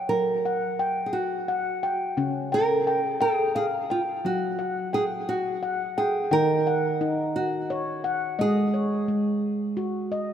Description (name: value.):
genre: world meditative.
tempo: 58 BPM (dotted quarters).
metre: 6/8.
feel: straight.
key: unclear.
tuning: A4 = 440 Hz.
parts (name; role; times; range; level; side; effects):
nylon-string guitar; melody; 0.0-10.1 s; E#4 to A#4; -26 LUFS; right 2 dB; diffuse ambient delay.
handpan; arpeggios; 0.0-10.3 s; C#3 to G5; -26 LUFS; left 2 dB; none.
room: wet concert hall reverb, RT60 2.3 s.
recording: none.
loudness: -23 LUFS.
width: side -9 dB against mid.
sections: 0.0-6.3 A section; 6.3-10.3 B section.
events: none.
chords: 0.0 F#; 2.2 C#; 4.2 F#sus2; 6.3 D#m; 8.4 G#5.